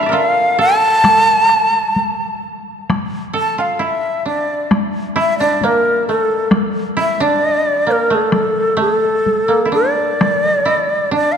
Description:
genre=japanese traditional, Japanese chamber music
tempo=66 BPM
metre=2/4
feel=rubato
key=A miyako bushi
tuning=A4 = 442 Hz
part: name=breathy bright shakuhachi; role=melody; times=0.0-11.4 s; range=A4 to A5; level=-14 LUFS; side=left 1 dB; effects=none
part: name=koto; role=second line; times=0.0-11.4 s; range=A3 to Bb5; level=-19 LUFS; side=right 3 dB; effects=none
part: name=taiko ensemble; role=percussion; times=1.0-10.4 s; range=none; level=-21 LUFS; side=left 2 dB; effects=none
room=wet church reverb, RT60 3.3 s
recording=dark, warm production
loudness=-13 LUFS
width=side -7 dB against mid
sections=0.0-10.2 A section; 10.2-11.4 B section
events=none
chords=none

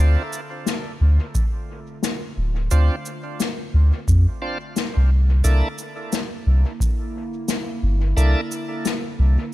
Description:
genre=ambient dub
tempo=88 BPM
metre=4/4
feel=swing 60% on 16ths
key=D minor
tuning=A4 = 440 Hz
part: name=warbly tape-like pad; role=sustained chords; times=0.0-9.5 s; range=D3 to A4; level=-34 LUFS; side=right 1 dB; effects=chorus, built-in reverb
part: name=bright tonewheel organ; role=stabs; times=0.0-8.4 s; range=Bb3 to A4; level=-30 LUFS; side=right 2 dB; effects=overdrive, slow rotary speaker, low-pass filter, dub echo
part: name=soft dub sub bass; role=bass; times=0.0-9.4 s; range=D1 to F2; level=-15 LUFS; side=equal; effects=none
part: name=cabasa and snare drum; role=drums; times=0.3-9.0 s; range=none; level=-27 LUFS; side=left 4 dB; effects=dub echo
part: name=electronic kick drum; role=drums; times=1.3-7.0 s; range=none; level=-22 LUFS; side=equal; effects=none
room=little or no reverb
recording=none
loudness=-19 LUFS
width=side -16 dB against mid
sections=0.0-9.5 A section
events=fade-in on ambient pad 0.0-9.5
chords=0.0 Dm7; 5.4 C13

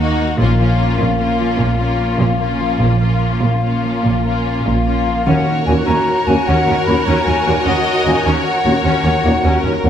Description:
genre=cinematic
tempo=100 BPM (dotted quarters)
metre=12/8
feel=straight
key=unclear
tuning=A4 = 440 Hz
part: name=clear symphonic violin section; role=melody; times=0.0-9.9 s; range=F4 to Eb5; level=-23 LUFS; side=left 4 dB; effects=none
part: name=rich symphonic violin section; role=second line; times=0.0-9.9 s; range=Db4 to Db5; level=-23 LUFS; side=left 3 dB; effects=none
part: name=rich symphonic viola section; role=accompaniment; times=0.0-9.9 s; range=Bb3 to Gb4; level=-21 LUFS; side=right 1 dB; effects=none
part: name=concert harp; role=arpeggios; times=0.0-9.9 s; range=Bb2 to Db5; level=-23 LUFS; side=left 5 dB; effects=none
part: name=rich studio double bass section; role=bass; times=0.0-9.9 s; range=Bb1 to Eb2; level=-21 LUFS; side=right 2 dB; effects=none
part: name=rich symphonic cello section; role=bass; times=0.0-9.9 s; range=Eb2 to Bb2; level=-20 LUFS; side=right 2 dB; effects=none
part: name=hollow concert flute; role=second line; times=5.1-9.9 s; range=F5 to Cb6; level=-19 LUFS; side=left 1 dB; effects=none
part: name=timpani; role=percussion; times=5.3-5.8 s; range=Eb3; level=-23 LUFS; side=left 2 dB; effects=none
part: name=mellow French horn section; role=sustained chords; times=5.7-9.9 s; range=Db4 to Gb4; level=-24 LUFS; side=left 3 dB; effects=none
part: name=warm trombone section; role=sustained chords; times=5.7-9.9 s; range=Bb2 to Bb3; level=-24 LUFS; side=right 2 dB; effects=none
room=moderate scoring stage reverb, RT60 2.1 s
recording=none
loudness=-13 LUFS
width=side -9 dB against mid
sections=0.0-5.3 A section; 5.3-9.9 B section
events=build-up 0.0-5.3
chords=0.4 Bbm; 5.3 Gb/Eb

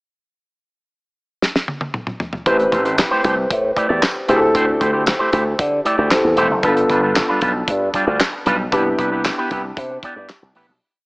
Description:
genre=early-eighties boogie funk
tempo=115 BPM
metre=4/4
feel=straight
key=A minor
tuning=A4 = 438 Hz
part: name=damped 70s drum kit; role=drums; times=1.4-10.7 s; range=handclaps, hi-hat, kick drum, snare drum, toms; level=-20 LUFS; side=equal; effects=none
part: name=dark grand piano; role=accompaniment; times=2.5-10.8 s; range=B3 to B4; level=-19 LUFS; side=equal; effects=none
part: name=electric guitar with an envelope filter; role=riff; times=2.5-10.7 s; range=G3 to D5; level=-20 LUFS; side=right 1 dB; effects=wide subtle chorus
part: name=slap bass with an envelope filter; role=bass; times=2.5-10.8 s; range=E1 to D3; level=-21 LUFS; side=equal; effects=none
part: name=tambourine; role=percussion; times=3.0-10.4 s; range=none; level=-34 LUFS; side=equal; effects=none
room=light reverb, small room ambience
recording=small speaker sound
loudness=-15 LUFS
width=side -30 dB against mid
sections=0.4-2.5 pickup bar; 2.5-10.8 verse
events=drum fill 1.4-2.5; fade-out 8.7-10.8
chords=0.4 N.C.; 2.5 Am7; 4.3 D9sus4; 6.6 G7; 8.7 Cmaj7

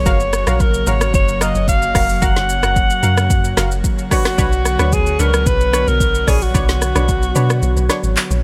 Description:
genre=amapiano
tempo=111 BPM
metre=4/4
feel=straight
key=F# major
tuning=A4 = 442 Hz
part: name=breathy alto saxophone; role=melody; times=0.0-8.2 s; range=F#4 to F#5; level=-22 LUFS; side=equal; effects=tape echo
part: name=airy breathy pad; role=sustained chords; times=0.0-8.4 s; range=C#3 to C#5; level=-27 LUFS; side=equal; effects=chorus
part: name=deep log drum bass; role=bass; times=0.0-8.4 s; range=E#1 to B2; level=-20 LUFS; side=equal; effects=none
part: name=punchy chord stab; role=stabs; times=0.1-8.0 s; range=D4 to F#5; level=-28 LUFS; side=equal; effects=chorus, tape echo
part: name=deep house drum kit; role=drums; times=0.1-8.4 s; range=handclaps, hi-hat, kick drum, rim click, shaker, snare drum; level=-20 LUFS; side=equal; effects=none
room=little or no reverb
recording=none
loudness=-16 LUFS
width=mono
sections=0.0-8.4 A section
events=kick muted 7.6-8.4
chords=0.1 F#maj7; 4.1 Bmadd9

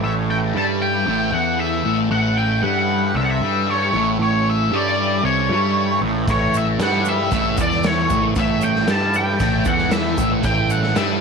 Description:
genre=psychedelic rock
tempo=115 BPM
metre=4/4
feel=straight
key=A mixolydian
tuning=A4 = 441 Hz
part: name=octave-fuzz lead guitar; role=melody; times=0.0-11.0 s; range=C#5 to A5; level=-21 LUFS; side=left 1 dB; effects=wah, distortion, tape echo
part: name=pedal harmonium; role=sustained chords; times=0.0-11.2 s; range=C#3 to A4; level=-30 LUFS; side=right 16 dB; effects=none
part: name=fuzz guitar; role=riff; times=0.0-11.2 s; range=A2 to G3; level=-21 LUFS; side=equal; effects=distortion, phaser
part: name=fuzz picked electric bass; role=bass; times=0.0-11.2 s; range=A1 to G2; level=-24 LUFS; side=equal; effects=overdrive
part: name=raw garage drum kit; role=drums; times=6.3-11.1 s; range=hi-hat, kick drum, snare drum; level=-24 LUFS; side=equal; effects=none
part: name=egg shaker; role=percussion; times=6.3-11.1 s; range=none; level=-39 LUFS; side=right 18 dB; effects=none
room=light reverb, small room ambience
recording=1960s-style stereo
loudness=-16 LUFS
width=side -5 dB against mid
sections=0.0-11.2 A section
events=none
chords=0.0 A

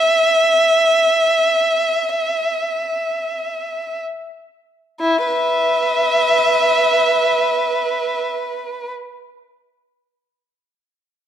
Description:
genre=classical, free, expressive piece for unaccompanied violin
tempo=free time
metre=none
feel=none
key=unclear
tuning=A4 = 440 Hz
part: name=rich violin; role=solo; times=0.0-8.9 s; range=E4 to E5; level=-15 LUFS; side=equal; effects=none
room=moderate recital hall reverb, RT60 1.4 s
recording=dark, warm production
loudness=-15 LUFS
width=side -9 dB against mid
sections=0.0-5.0 A section; 5.0-11.3 B section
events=slowing down 0.0-5.0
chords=none

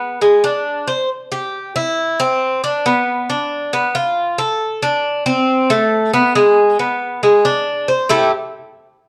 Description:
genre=latin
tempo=137 BPM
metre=4/4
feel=straight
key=A minor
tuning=A4 = 438 Hz
part: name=Cuban tres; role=solo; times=0.0-8.3 s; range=G#3 to C5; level=-16 LUFS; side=equal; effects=none
room=moderate large studio reverb, RT60 1.2 s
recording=dark, warm production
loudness=-16 LUFS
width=mono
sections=0.0-1.1 A section; 1.1-8.1 B section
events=none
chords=0.0 G#dim; 1.1 Cadd9; 2.8 Bm7b5; 4.6 Amadd11; 6.4 G#dim; 8.1 A5

